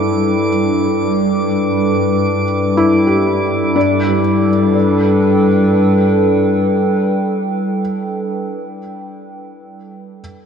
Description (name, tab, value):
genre	ambient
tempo	free time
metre	none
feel	none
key	G major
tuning	A4 = 437 Hz
part	warbly tape-like pad	sustained chords	0.0-8.4 s	G3 to G5	-15 LUFS	equal	chorus, built-in reverb
part	felt-muted upright piano	arpeggios	0.0-10.2 s	D4 to G4	-20 LUFS	left 2 dB	diffuse ambient delay
part	warm studio cello section	bass	0.0-6.7 s	G2	-21 LUFS	left 2 dB	none
part	drifting glass-harmonics texture	texture	0.0-3.8 s	D6	-25 LUFS	right 4 dB	chorus, built-in reverb
room	wet cathedral reverb, RT60 7.1 s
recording	dark, warm production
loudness	-12 LUFS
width	side -7 dB against mid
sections	0.0-3.8 A section; 3.8-7.7 B section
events	none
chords	0.0 Gadd9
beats	free time